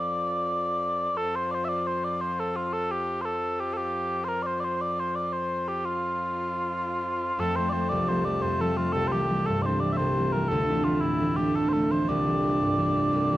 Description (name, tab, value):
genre	celtic folk, Celtic slip jig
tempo	115 BPM (dotted quarters)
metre	9/8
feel	straight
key	F major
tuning	A4 = 443 Hz
part	mellow small bagpipes	melody	0.0-13.4 s	E4 to E5	-27 LUFS	equal	slapback echo
part	accordion	drone	0.0-13.4 s	F2 to A3	-34 LUFS	left 2 dB	none
part	concert harp	accompaniment	7.4-13.4 s	C2 to D4	-25 LUFS	right 1 dB	none
room	light reverb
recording	dry, close 1970s-style studio recording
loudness	-24 LUFS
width	side -15 dB against mid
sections	0.0-7.4 A section; 7.4-13.4 A section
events	none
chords	0.0 N.C.; 7.4 F; 9.0 C; 10.5 Dsus2; 12.1 Cadd9